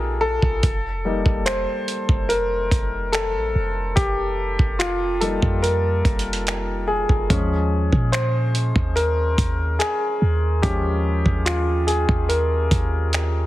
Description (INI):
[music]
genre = contemporary R&B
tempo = 72 BPM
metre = 4/4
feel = straight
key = unclear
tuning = A4 = 444 Hz
[part]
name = clear grand piano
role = accompaniment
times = 0.0-13.5 s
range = F3 to C5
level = -22 LUFS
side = left 1 dB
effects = none
[part]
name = clean 808-style bass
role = bass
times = 0.0-13.5 s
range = F1 to Bb2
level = -23 LUFS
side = equal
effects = none
[part]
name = dusty soul sampler-style drum kit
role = drums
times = 0.4-13.3 s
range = finger snaps, hi-hat, kick drum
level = -22 LUFS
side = equal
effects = none
[sound]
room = little or no reverb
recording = heavily compressed radio sound, multiband compression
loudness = -18 LUFS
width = side -15 dB against mid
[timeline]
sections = 0.0-13.5 A section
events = grand piano solo 0.0-13.5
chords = 0.0 Bb9sus4; 0.6 F9sus4; 7.3 Eb9sus4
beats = | 0.63 1.47 2.30 3.13 | 3.97 4.80 5.63 6.47 | 7.30 8.13 8.97 9.80 | 10.63 11.47 12.30 13.13